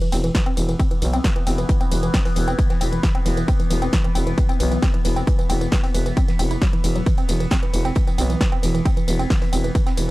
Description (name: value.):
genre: driving peak-time techno.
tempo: 134 BPM.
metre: 4/4.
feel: straight.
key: unclear.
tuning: A4 = 440 Hz.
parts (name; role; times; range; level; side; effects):
woody wave-folded pluck; riff; 0.0-10.0 s; E3 to E4; -26 LUFS; right 1 dB; chorus, tube saturation, sidechain pumping, tape echo.
overtone-sweeping drone; drone; 0.6-10.1 s; E3 to B3; -31 LUFS; left 3 dB; chorus, built-in reverb, phaser, sidechain pumping.
deep reggae drum kit; drums; 0.0-10.1 s; hi-hat, snare drum; -42 LUFS; left 2 dB; none.
punchy analog drum machine; drums; 0.0-10.1 s; hi-hat, ride cymbal, snare drum, tambourine; -29 LUFS; equal; sidechain pumping on hats, sidechain pumping on cymbals, sidechain pumping on perc, sidechain pumping on toms.
growling FM bass; bass; 0.1-10.1 s; E1 to B1; -21 LUFS; equal; sidechain pumping.
electronic kick drum; drums; 0.3-9.8 s; none; -19 LUFS; equal; overdrive.
room: little or no reverb.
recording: dark, warm production.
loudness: -17 LUFS.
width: side -19 dB against mid.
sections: 0.0-10.1 A section.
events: none.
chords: 0.0 E5.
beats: 0.35 0.80 1.24 | 1.69 2.14 2.59 3.03 | 3.48 3.93 4.38 4.83 | 5.27 5.72 6.17 6.62 | 7.06 7.51 7.96 8.41 | 8.86 9.30 9.75.